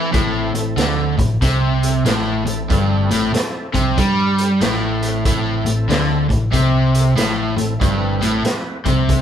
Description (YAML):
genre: blues rock power trio and southern rock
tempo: 94 BPM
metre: 4/4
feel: swing 63% on 8ths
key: A minor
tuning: A4 = 439 Hz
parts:
  - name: overdriven tonewheel organ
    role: sustained chords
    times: 0.0-8.8 s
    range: A3 to B4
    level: -29 LUFS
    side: right 2 dB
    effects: slow rotary speaker, chorus vibrato
  - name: overdriven semi-hollow guitar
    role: riff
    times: 0.0-9.2 s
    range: G2 to G3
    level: -17 LUFS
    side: equal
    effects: none
  - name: vintage muted picked electric bass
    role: bass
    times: 0.1-9.2 s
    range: G1 to G2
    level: -24 LUFS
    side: equal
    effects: none
  - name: raw garage drum kit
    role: drums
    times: 0.1-9.2 s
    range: hi-hat, kick drum, snare drum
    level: -21 LUFS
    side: equal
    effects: none
room: moderate large studio reverb, RT60 1.0 s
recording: band playing live in one room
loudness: -15 LUFS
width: side -9 dB against mid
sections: 0.0-9.2 A section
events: none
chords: 0.0 Am